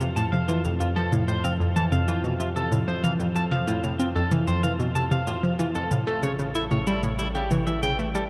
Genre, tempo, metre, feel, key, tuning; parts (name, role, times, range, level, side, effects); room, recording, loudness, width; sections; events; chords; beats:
ambient, sequencer-driven space music; 94 BPM; 4/4; straight; F major; A4 = 440 Hz
analog pluck; riff; 0.0-8.3 s; F2 to E4; -28 LUFS; equal; chorus, delay
analog drone; bass; 0.0-8.3 s; A1 to F2; -33 LUFS; equal; chorus
electronic cabasa and toms; percussion; 0.0-8.3 s; -34 LUFS; equal; delay
clean electric guitar; arpeggios; 0.2-8.2 s; E4 to A5; -32 LUFS; equal; delay
wet huge ambient reverb, RT60 8.0 s; dark, warm production; -25 LUFS; mono
0.0-8.3 A section
0.0 F; 5.9 A7
0.17 | 0.81 1.44 2.08 2.72 | 3.36 4.00 4.63 5.27 | 5.91 6.55 7.19 7.83